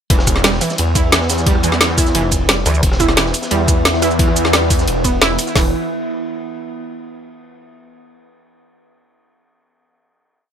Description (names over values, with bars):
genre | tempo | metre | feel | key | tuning
dark technical drum and bass | 176 BPM | 4/4 | straight | E phrygian | A4 = 440 Hz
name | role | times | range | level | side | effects
wide unison pluck | arpeggios | 0.1-5.7 s | E3 to E4 | -21 LUFS | right 4 dB | sidechain pumping, dub echo
wide detuned saw bass | bass | 0.1-5.7 s | E1 to E2 | -18 LUFS | equal | chorus, overdrive, sidechain pumping
crunchy breakbeat drum kit | drums | 0.1-5.5 s | ride cymbal, snare drum | -27 LUFS | equal | high-pass filter on cymbals, studio reverb, high-pass filter on snare, high-pass filter on room
drum and bass drum kit | drums | 0.1-5.6 s | hi-hat, kick drum, snare drum | -16 LUFS | equal | overdrive, studio reverb
drum and bass drum kit | drums | 0.1-5.5 s | hi-hat, rim click, shaker, snare drum | -16 LUFS | equal | overdrive, studio reverb
vowel-sweep wobble bass | bass | 2.7-2.8 s | D2 | -14 LUFS | equal | chorus
metallic inharmonic drone | sustained chords | 3.3-5.7 s | E3 to E4 | -23 LUFS | left 1 dB | chorus, built-in reverb, sidechain pumping
room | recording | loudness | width
little or no reverb | none | -12 LUFS | side -8 dB against mid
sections
0.1-5.6 drop; 5.6-6.9 final chord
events
drop 0.1-5.6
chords
0.1 E5